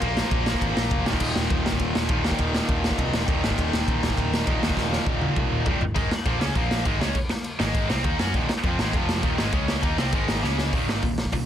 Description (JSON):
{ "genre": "punk rock", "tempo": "202 BPM", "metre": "4/4", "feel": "straight", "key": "unclear", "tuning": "A4 = 440 Hz", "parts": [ { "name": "tight distorted guitar", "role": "riff", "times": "0.0-11.5 s", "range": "Eb2 to Gb4", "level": "-26 LUFS", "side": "equal", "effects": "distortion" }, { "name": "overdriven picked electric bass", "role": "bass", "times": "0.0-11.5 s", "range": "Eb1 to Gb2", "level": "-28 LUFS", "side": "equal", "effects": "none" }, { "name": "raw garage drum kit", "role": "drums", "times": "0.0-11.4 s", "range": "crash cymbal, hi-hat, kick drum, ride cymbal, snare drum, toms", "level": "-25 LUFS", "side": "equal", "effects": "none" } ], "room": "little or no reverb", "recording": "dense, heavily limited modern master", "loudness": "-21 LUFS", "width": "side -10 dB against mid", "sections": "0.0-6.0 A section; 6.0-10.7 B section", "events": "drum fill 4.8-6.0, 10.4", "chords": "0.0 Bb5; 1.1 Eb5; 6.0 Ab5; 6.6 Bb5; 6.9 Ab5; 8.3 Eb5; 8.9 F5; 9.2 Eb5; 9.5 Db5; 9.8 Eb; 10.1 Ab5; 10.4 Db5; 10.7 Eb5" }